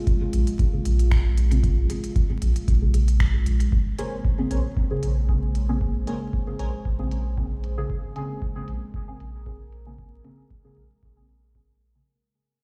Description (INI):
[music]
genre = dub techno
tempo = 115 BPM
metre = 4/4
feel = swing 54% on 16ths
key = Bb minor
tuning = A4 = 440 Hz
[part]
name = deep dark ambient pad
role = sustained chords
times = 0.0-12.0 s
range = Ab3 to C5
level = -37 LUFS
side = equal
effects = chorus, built-in reverb, sidechain pumping
[part]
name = deep mellow chord stab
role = stabs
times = 0.0-12.1 s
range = Db3 to Ab4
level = -35 LUFS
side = equal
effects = chorus, phaser, sidechain pumping, dub echo
[part]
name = deep house drum kit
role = drums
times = 0.1-11.9 s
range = finger snaps, hi-hat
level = -40 LUFS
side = equal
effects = low-pass filter on hats, low-pass filter on snare, dub echo
[part]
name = electronic kick drum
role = drums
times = 0.1-11.7 s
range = none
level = -27 LUFS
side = equal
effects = none
[part]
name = warm sub bass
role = bass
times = 0.3-12.0 s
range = Bb1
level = -25 LUFS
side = equal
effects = sidechain pumping
[part]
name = wavetable chord stab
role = riff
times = 4.0-6.7 s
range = Bb4 to Ab5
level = -42 LUFS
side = equal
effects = sidechain pumping, dub echo
[sound]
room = digital ambience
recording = played on a big sound system in a bare room, large studio reverb, vinyl crackle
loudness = -24 LUFS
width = mono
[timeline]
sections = 0.0-3.7 A section; 3.7-12.1 B section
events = fade-out 3.7-12.1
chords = 0.0 Bbm9